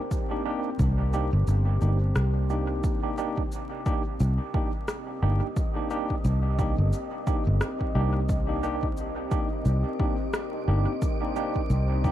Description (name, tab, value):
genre	ambient dub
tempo	88 BPM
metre	4/4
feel	swing 57% on 16ths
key	C minor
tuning	A4 = 440 Hz
part	deep dark ambient pad	sustained chords	0.0-12.1 s	C4 to Eb5	-35 LUFS	left 1 dB	chorus, built-in reverb
part	electronic cabasa and rim click	drums	0.1-12.1 s	none	-37 LUFS	left 1 dB	overdrive, small room ambience, dub echo
part	electronic kick drum	drums	0.1-12.1 s	none	-29 LUFS	equal	overdrive, small room ambience
part	mellow tine electric piano	stabs	0.3-12.1 s	Bb3 to G4	-32 LUFS	right 2 dB	overdrive, fast stereo tremolo, dub echo
part	fingered electric bass	bass	0.8-12.1 s	G1 to C2	-24 LUFS	equal	none
part	wind-like tuned noise texture	texture	4.2-12.1 s	Eb4 to D6	-40 LUFS	left 2 dB	built-in reverb
room	digital ambience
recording	dark, warm production, vinyl crackle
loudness	-24 LUFS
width	side -12 dB against mid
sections	0.0-2.8 A section; 2.8-12.1 A section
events	kick drops out 1.5-2.8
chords	0.0 Cm7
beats	| 0.11 0.79 1.47 2.16 | 2.84 3.52 4.20 4.88 | 5.57 6.25 6.93 7.61 | 8.29 8.97 9.66 10.34 | 11.02 11.70